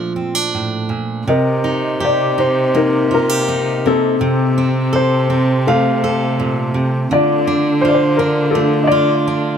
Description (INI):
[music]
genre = acoustic folk-pop ballad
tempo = 82 BPM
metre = 4/4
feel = straight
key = C dorian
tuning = A4 = 439 Hz
[part]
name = dark grand piano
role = melody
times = 0.0-9.6 s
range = C4 to F5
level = -16 LUFS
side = left 2 dB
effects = tape echo
[part]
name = fingerpicked steel-string acoustic guitar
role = accompaniment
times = 0.0-9.6 s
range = A2 to A4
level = -19 LUFS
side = right 3 dB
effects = none
[part]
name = warm cello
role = bass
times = 1.3-9.6 s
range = C3 to D3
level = -19 LUFS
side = equal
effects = none
[sound]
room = little or no reverb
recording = close, detailed microphones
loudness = -13 LUFS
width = side -7 dB against mid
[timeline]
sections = 0.0-1.3 A section; 1.3-9.6 B section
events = none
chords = 0.0 Bbmaj7; 1.3 Cm7; 4.2 F/C; 7.1 Dm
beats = 0.53 | 1.27 2.00 2.73 3.46 | 4.19 4.92 5.65 6.37 | 7.10 7.82 8.54 9.27